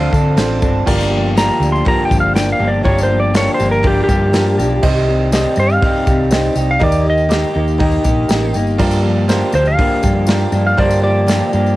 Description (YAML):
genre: folk rock and heartland rock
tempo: 121 BPM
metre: 4/4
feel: straight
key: G minor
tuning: A4 = 441 Hz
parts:
  - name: clean lap steel guitar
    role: melody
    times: 0.0-11.8 s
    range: G4 to C6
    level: -18 LUFS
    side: equal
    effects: cassette tape
  - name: picked steel-string acoustic guitar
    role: accompaniment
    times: 0.0-11.8 s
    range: G2 to A4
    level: -23 LUFS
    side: left 4 dB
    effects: none
  - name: warm concert grand piano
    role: accompaniment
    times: 0.0-11.7 s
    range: D4 to D6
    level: -22 LUFS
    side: right 4 dB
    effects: none
  - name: electric guitar through a small old amp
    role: riff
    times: 0.0-11.8 s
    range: G2 to A4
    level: -20 LUFS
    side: equal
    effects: none
  - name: hollow-body short-scale fingered electric bass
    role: bass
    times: 0.0-11.8 s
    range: G1 to D3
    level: -17 LUFS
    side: equal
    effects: none
  - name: soft brush drum kit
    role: drums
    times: 0.1-11.4 s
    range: crash cymbal, hi-hat, kick drum, snare drum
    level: -18 LUFS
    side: equal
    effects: cassette tape
  - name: tambourine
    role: percussion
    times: 0.1-11.7 s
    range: none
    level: -34 LUFS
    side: left 7 dB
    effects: none
room: light reverb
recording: home recording on cassette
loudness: -12 LUFS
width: side -17 dB against mid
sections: 0.9-11.8 A section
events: electric slide guitar solo 0.9-11.8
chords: 0.0 Dm7; 0.9 Gm7; 4.8 Cm; 6.8 Eb; 8.8 Gm7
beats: 0.37 | 0.87 1.36 1.86 2.36 | 2.85 3.35 3.84 4.34 | 4.83 5.33 5.82 6.32 | 6.81 7.31 7.81 8.30 | 8.80 9.30 9.79 10.29 | 10.79 11.29